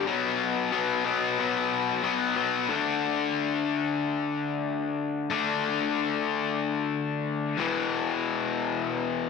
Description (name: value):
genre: rock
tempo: 92 BPM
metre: 4/4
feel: straight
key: unclear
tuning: A4 = 440 Hz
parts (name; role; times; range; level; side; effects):
- raw garage guitar; solo; 0.0-9.3 s; E2 to D4; -25 LUFS; left 6 dB; overdrive
room: moderate echo chamber reverb, RT60 2.0 s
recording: none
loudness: -25 LUFS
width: side -5 dB against mid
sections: 0.0-2.7 A section; 2.7-9.3 B section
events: none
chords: 0.1 B5; 2.7 D5; 7.6 E5